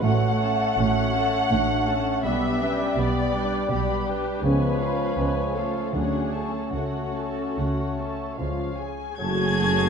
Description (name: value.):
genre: classical, slow romantic movement for symphony orchestra.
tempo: 72-83 BPM.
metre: 3/4.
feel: rubato.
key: F# minor.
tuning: A4 = 440 Hz.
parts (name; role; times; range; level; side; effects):
muted studio violin section; melody; 0.0-9.9 s; E#5 to G#6; -34 LUFS; left 5 dB; none.
mellow clarinet; second line; 0.0-9.9 s; G3 to F#4; -31 LUFS; left 3 dB; none.
mellow cor anglais; second line; 0.0-9.9 s; C#5 to D5; -33 LUFS; equal; none.
muted symphonic violin section; second line; 0.0-9.9 s; A3 to F#5; -29 LUFS; left 1 dB; none.
muted symphonic viola section; accompaniment; 0.0-9.9 s; G#3 to B4; -32 LUFS; right 1 dB; none.
warm bassoon; accompaniment; 0.0-9.9 s; E#3 to A3; -32 LUFS; equal; none.
mellow French horn section; sustained chords; 0.0-9.9 s; E#3 to F#4; -33 LUFS; left 6 dB; none.
muted studio double bass section; bass; 0.0-9.9 s; F#1 to D2; -30 LUFS; right 3 dB; none.
muted symphonic cello section; bass; 0.0-9.9 s; F#2 to D3; -30 LUFS; right 4 dB; none.
small flute group; second line; 9.2-9.9 s; A5; -34 LUFS; left 7 dB; none.
warm trombone section; sustained chords; 9.2-9.9 s; none; barely audible; none; none.
clear trumpet; stabs; 9.2-9.9 s; G#4; -27 LUFS; right 1 dB; none.
mellow tuba; bass; 9.2-9.9 s; F#1; -29 LUFS; right 5 dB; none.
room: moderate concert hall reverb, RT60 2.2 s.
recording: dark, warm production.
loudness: -22 LUFS.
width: side -6 dB against mid.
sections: 0.0-9.2 A section.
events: none.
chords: 0.0 F#m/A; 2.3 G/B; 4.4 C#7; 5.9 Dmaj7; 6.7 F#m/C#; 8.4 C#; 9.2 F#m.